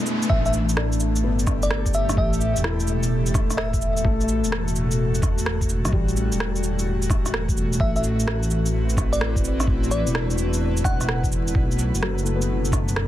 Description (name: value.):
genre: future garage.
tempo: 128 BPM.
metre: 4/4.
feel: swing 66% on 16ths.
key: A dorian.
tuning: A4 = 442 Hz.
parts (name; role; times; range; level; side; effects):
felt-muted upright piano; accompaniment; 0.0-13.1 s; F#3 to F#4; -31 LUFS; left 6 dB; vintage 12-bit sampler grit, sidechain pumping, ping-pong delay.
airy breathy pad; sustained chords; 0.0-13.1 s; A2 to B4; -28 LUFS; right 1 dB; chorus, sidechain pumping.
electronic cabasa, shaker and rim click; drums; 0.1-13.1 s; none; -29 LUFS; right 1 dB; soft clipping on snare.
bell-like FM electric piano; melody; 0.3-4.2, 7.8-11.2 s; D5 to F#5; -30 LUFS; left 1 dB; chorus, tape echo.
dark detuned saw bass; bass; 0.3-13.1 s; E1 to C2; -24 LUFS; equal; none.
electronic kick drum; drums; 0.3-12.8 s; none; -23 LUFS; equal; none.
room: digital ambience.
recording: dense, heavily limited modern master, vinyl crackle.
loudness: -20 LUFS.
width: side -13 dB against mid.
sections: 0.3-13.1 A section.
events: break 0.0-0.3.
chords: 0.3 A7(no3); 7.8 D13/A; 11.6 Bm7.